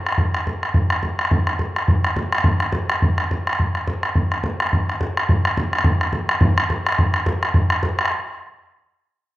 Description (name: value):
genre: celtic folk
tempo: 212 BPM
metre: 4/4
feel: swing 57% on 8ths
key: none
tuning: none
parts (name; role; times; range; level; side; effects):
- bodhran; percussion; 0.1-8.1 s; none; -17 LUFS; equal; none
room: light reverb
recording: recorded outdoors, with no room sound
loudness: -17 LUFS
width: side -16 dB against mid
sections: 0.0-8.1 A section; 8.1-9.2 B section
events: none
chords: none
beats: | 0.19 0.47 0.75 1.04 | 1.32 1.60 1.89 2.17 | 2.45 2.74 3.02 3.30 | 3.59 3.87 4.16 4.44 | 4.72 5.01 5.29 5.57 | 5.86 6.14 6.42 6.71 | 6.99 7.27 7.55 7.84